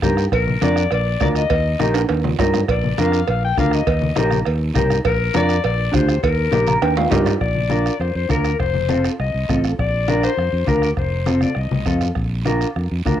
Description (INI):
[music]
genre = latin, cumbia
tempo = 203 BPM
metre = 4/4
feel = straight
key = Bb major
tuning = A4 = 440 Hz
[part]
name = mellow electric guitar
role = accompaniment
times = 0.0-13.2 s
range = C4 to Bb5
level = -22 LUFS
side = right 1 dB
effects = spring reverb, cassette tape, plate reverb
[part]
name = fingered electric bass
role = bass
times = 0.0-13.2 s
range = F1 to G2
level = -21 LUFS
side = equal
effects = none
[part]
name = bombo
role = percussion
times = 0.0-13.2 s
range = none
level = -27 LUFS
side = right 1 dB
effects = none
[part]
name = congas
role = percussion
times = 0.0-13.2 s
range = none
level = -26 LUFS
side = left 5 dB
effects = none
[part]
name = guiro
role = percussion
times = 0.0-13.2 s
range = none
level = -35 LUFS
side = right 10 dB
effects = none
[part]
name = breathy clarinet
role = second line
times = 0.3-12.0 s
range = Bb4 to G5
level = -23 LUFS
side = left 7 dB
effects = cassette tape, plate reverb
[part]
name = cowbell and timbales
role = percussion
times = 0.3-7.3 s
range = none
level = -23 LUFS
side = right 10 dB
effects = none
[sound]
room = moderate small room reverb, RT60 0.5 s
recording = home recording on cassette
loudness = -16 LUFS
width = side -10 dB against mid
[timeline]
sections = 0.0-7.4 A section; 7.4-13.2 B section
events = clarinet solo 0.0-7.4, 7.4-13.2; drum fill 1.9-2.7, 6.8-7.4, 11.7-12.2; clean electric guitar fill 6.5-7.4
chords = 0.3 Bb; 1.5 Eb; 2.7 Bb; 3.9 Eb; 5.1 Bb; 6.2 Eb; 7.4 Bb; 8.6 F7; 9.8 Bb; 11.0 F7; 12.2 Bb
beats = 0.03 | 0.32 0.62 0.91 1.21 | 1.50 1.80 2.10 2.39 | 2.69 2.98 3.28 3.57 | 3.87 4.17 4.46 4.76 | 5.05 5.35 5.64 5.94 | 6.23 6.53 6.82 7.12 | 7.41 7.71 8.01 8.30 | 8.60 8.89 9.19 9.49 | 9.78 10.08 10.38 10.68 | 10.97 11.27 11.57 11.86 | 12.16 12.46 12.75 13.05